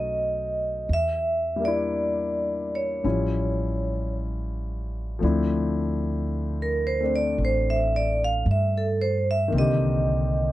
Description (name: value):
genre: jazz ballad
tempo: 56 BPM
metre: 4/4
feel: swing 68% on 8ths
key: D minor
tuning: A4 = 441 Hz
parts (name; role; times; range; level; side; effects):
- vibraphone with medium hard mallets; melody; 0.0-10.5 s; A4 to F5; -25 LUFS; right 2 dB; none
- warm concert grand piano; accompaniment; 0.0-10.5 s; D3 to G4; -28 LUFS; left 5 dB; none
- upright bass; bass; 0.0-10.5 s; A1 to G2; -27 LUFS; right 1 dB; none
room: light reverb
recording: dry, close 1970s-style studio recording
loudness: -22 LUFS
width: side -15 dB against mid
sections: 0.0-5.2 A section; 5.2-10.5 B section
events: vibraphone solo 5.2-10.5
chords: 0.0 B7; 0.9 Em7b5; 3.0 A7b13; 5.2 Dm9; 9.5 Cm7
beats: | 0.89 1.97 3.05 4.13 | 5.22 6.31 7.38 8.46 | 9.53